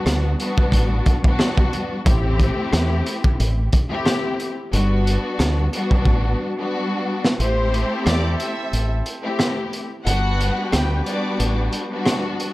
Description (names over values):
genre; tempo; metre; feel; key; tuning
hip hop, boom-bap hip-hop; 90 BPM; 4/4; swing 55% on 16ths; A dorian; A4 = 441 Hz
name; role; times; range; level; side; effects
warm studio string section; accompaniment; 0.0-12.5 s; G3 to G4; -24 LUFS; left 1 dB; high-pass filter, low-pass filter
deep dub fingered electric bass; bass; 0.1-11.7 s; G1 to E2; -20 LUFS; equal; none
crunchy breakbeat drum kit; drums; 0.1-12.5 s; hi-hat, kick drum, rim click, snare drum; -21 LUFS; equal; none
warm studio violin section; melody; 7.4-11.5 s; G4 to F#6; -27 LUFS; equal; high-pass filter, low-pass filter, tape echo
warm horn section; stabs; 7.4-12.4 s; B3 to B4; -34 LUFS; right 1 dB; high-pass filter, low-pass filter, tape echo
room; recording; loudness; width
small room ambience; none; -18 LUFS; side -18 dB against mid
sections
0.0-7.4 A section; 7.4-12.5 B section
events
drum fill 6.1-7.4; kick muted 7.4-12.5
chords
0.0 Gmaj7; 2.1 Am7; 4.7 Gmaj7; 7.4 Am7; 10.1 Gmaj7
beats
0.06 0.73 1.39 | 2.06 2.73 3.39 4.06 | 4.73 5.39 6.06 6.73 | 7.39 8.06 8.73 9.39 | 10.06 10.73 11.39 12.06